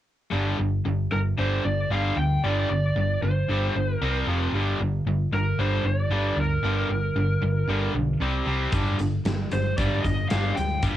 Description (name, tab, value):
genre	hard rock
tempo	114 BPM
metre	4/4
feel	straight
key	G minor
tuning	A4 = 439 Hz
part	cranked stack guitar	riff	0.3-11.0 s	F2 to C4	-29 LUFS	left 6 dB	overdrive, cassette tape
part	distorted electric guitar	riff	0.3-11.0 s	F2 to C4	-29 LUFS	right 7 dB	distortion, cassette tape
part	hollow-body short-scale picked electric bass	bass	0.3-11.0 s	F1 to D2	-26 LUFS	equal	none
part	lead guitar through a small cranked amp	melody	1.1-10.8 s	Bb4 to G5	-29 LUFS	equal	overdrive, cassette tape
part	big rock drum kit	drums	8.7-11.0 s	hi-hat, kick drum, snare drum	-28 LUFS	equal	none
room	light reverb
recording	home recording on cassette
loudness	-22 LUFS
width	side -12 dB against mid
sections	0.3-11.0 A section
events	none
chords	0.3 G5; 4.0 C5; 4.3 F5; 4.5 Gm; 8.2 C5; 8.7 G5